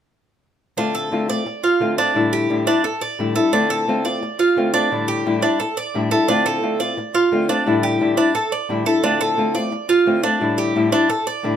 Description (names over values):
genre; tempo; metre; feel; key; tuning
latin; 174 BPM; 4/4; straight; D minor; A4 = 440 Hz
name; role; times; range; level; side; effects
nylon-string guitar; accompaniment; 0.8-11.6 s; A2 to F4; -19 LUFS; left 3 dB; none
Cuban tres; arpeggios; 0.8-11.6 s; D4 to D5; -19 LUFS; right 4 dB; none
room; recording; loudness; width
moderate large studio reverb, RT60 0.8 s; minimal, uncompressed stereo recording; -16 LUFS; side -9 dB against mid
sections
0.8-11.6 A section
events
none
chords
0.8 Dm7; 2.2 A7sus4; 3.5 Dm7; 4.9 A7sus4; 6.3 Dm7; 7.7 A7sus4; 9.0 Dm7; 10.4 A7sus4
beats
| 0.77 1.12 1.46 1.81 | 2.15 2.50 2.84 3.19 | 3.53 3.88 4.22 4.57 | 4.91 5.25 5.60 5.94 | 6.29 6.63 6.97 7.32 | 7.66 8.00 8.35 8.69 | 9.03 9.38 9.72 10.06 | 10.41 10.75 11.09 11.44